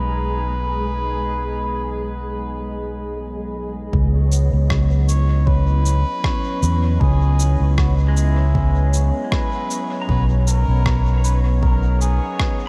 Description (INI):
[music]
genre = ambient dub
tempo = 78 BPM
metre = 4/4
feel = swing 54% on 16ths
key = C# dorian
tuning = A4 = 440 Hz
[part]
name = trumpet with cup mute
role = melody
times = 0.0-12.7 s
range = E4 to C#5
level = -30 LUFS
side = equal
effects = vintage 12-bit sampler grit, analog delay
[part]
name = warbly tape-like pad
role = sustained chords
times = 0.0-12.7 s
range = F#3 to D#5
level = -33 LUFS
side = equal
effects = chorus, built-in reverb
[part]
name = pedal steel guitar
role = arpeggios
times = 0.0-0.7, 8.1-12.0 s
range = G#3 to A#5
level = -36 LUFS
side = equal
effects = analog delay
[part]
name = fingered electric bass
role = bass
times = 0.0-12.2 s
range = B1 to E2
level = -20 LUFS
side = equal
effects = none
[part]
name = bubbling stepped-filter texture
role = texture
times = 0.0-12.7 s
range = G#3 to C#5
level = -33 LUFS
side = equal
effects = chorus, built-in reverb
[part]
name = electronic kick drum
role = drums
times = 3.9-12.6 s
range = none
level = -24 LUFS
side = equal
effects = overdrive, studio reverb
[part]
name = electronic cabasa and rim click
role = drums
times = 4.3-12.6 s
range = none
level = -31 LUFS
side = equal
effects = overdrive, low-pass filter on perc, studio reverb, low-pass filter on snare, dub echo
[sound]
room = light reverb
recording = none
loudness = -19 LUFS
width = mono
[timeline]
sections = 0.0-3.9 A section; 3.9-12.7 B section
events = none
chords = 0.0 B6; 3.9 C#m11; 10.1 B6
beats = 0.09 | 0.86 1.63 2.40 3.16 | 3.93 4.70 5.47 6.24 | 7.01 7.78 8.55 9.32 | 10.09 10.86 11.63 12.39